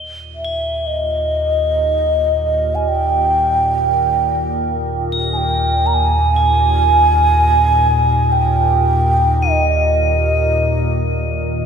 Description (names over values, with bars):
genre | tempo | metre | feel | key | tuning
world meditative, free-time meditation music | free time | none | none | Eb major | A4 = 440 Hz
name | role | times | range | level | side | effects
organ-like drone | drone | 0.3-11.7 s | Eb2 to Bb2 | -18 LUFS | equal | ensemble chorus, built-in reverb, phaser
mellow hollow low xiao | melody | 0.4-11.6 s | Eb5 to Bb5 | -16 LUFS | right 2 dB | ping-pong delay
crotales | texture | 0.4-11.7 s | Eb7 to Bb7 | -26 LUFS | left 5 dB | none
room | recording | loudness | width
wet lush hall reverb, RT60 2.6 s | dreamy mix soaked in reverb | -13 LUFS | side -6 dB against mid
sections
0.0-11.7 A section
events
none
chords
none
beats
free time